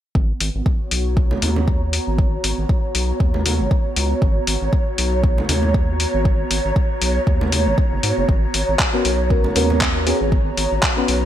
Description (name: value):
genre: deep house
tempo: 118 BPM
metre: 4/4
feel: swing 56% on 16ths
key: G# minor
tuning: A4 = 441 Hz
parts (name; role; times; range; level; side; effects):
- round analog bass; bass; 0.2-11.3 s; F#1 to G#2; -22 LUFS; equal; sidechain pumping
- electronic kick drum; drums; 0.2-10.9 s; none; -18 LUFS; equal; overdrive
- airy breathy pad; texture; 0.2-11.3 s; B3 to A#5; -24 LUFS; equal; chorus, sidechain pumping
- dusty soul sampler-style drum kit; drums; 0.4-11.2 s; handclaps, hi-hat; -22 LUFS; left 2 dB; gated reverb
- congas; percussion; 1.3-9.8 s; none; -25 LUFS; right 4 dB; none
- mellow FM electric piano; stabs; 8.9-11.3 s; B3 to B4; -22 LUFS; left 1 dB; chorus, phaser, digital delay
room: little or no reverb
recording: bright 1980s-style digital production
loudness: -16 LUFS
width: side -11 dB against mid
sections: 0.2-11.3 A section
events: none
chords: 0.2 G#m11